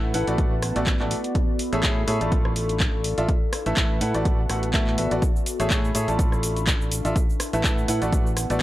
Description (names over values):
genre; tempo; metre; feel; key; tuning
piano house; 124 BPM; 4/4; swing 55% on 16ths; unclear; A4 = 440 Hz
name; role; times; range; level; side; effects
bright concert grand piano; riff; 0.0-8.6 s; A3 to A5; -27 LUFS; equal; sidechain pumping, tape echo
fingered electric bass; bass; 0.0-8.6 s; A1 to A2; -27 LUFS; equal; sidechain pumping
warbly tape-like pad; texture; 0.0-8.6 s; B3 to C#6; -30 LUFS; left 1 dB; chorus, built-in reverb, sidechain pumping
punchy analog drum machine; drums; 0.1-8.6 s; cabasa, handclaps, hi-hat, rim click; -28 LUFS; equal; none
electronic kick drum; drums; 0.4-8.2 s; none; -23 LUFS; equal; none
room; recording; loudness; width
digital ambience; dry, gritty hardware recording; -20 LUFS; side -15 dB against mid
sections
0.0-8.6 A section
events
none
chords
0.0 Bm7/A; 1.4 Amaj7; 2.3 Dm/A; 3.3 Bm7/A; 5.2 Amaj7; 6.2 Dm/A; 7.2 Bm7/A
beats
0.38 0.87 | 1.35 1.83 2.32 2.80 | 3.29 3.77 4.25 4.74 | 5.22 5.71 6.19 6.67 | 7.16 7.64 8.12 8.61